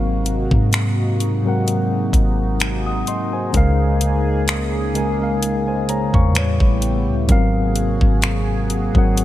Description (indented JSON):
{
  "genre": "contemporary R&B",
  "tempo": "64 BPM",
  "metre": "4/4",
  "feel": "swing 54% on 16ths",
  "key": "unclear",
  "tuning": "A4 = 441 Hz",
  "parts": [
    { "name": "mellow tine electric piano", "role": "accompaniment", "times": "0.0-9.2 s", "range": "Ab2 to Eb6", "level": "-20 LUFS", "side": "left 2 dB", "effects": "medium stereo tremolo" },
    { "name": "chorused pulse-width pad", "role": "sustained chords", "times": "0.0-9.2 s", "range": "C3 to Ab4", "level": "-25 LUFS", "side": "right 2 dB", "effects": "none" },
    { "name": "soft 808-style bass", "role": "bass", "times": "0.0-9.2 s", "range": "Ab1 to Ab2", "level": "-21 LUFS", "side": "equal", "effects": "none" },
    { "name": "trap drum kit", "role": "drums", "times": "0.3-9.2 s", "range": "finger snaps, hi-hat, kick drum", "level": "-19 LUFS", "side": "equal", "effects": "none" }
  ],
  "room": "little or no reverb",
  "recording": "none",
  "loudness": "-16 LUFS",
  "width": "side -14 dB against mid",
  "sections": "0.0-9.2 A section",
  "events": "none",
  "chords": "0.0 Ab13; 3.5 Db6; 6.4 A9; 7.3 Ab13"
}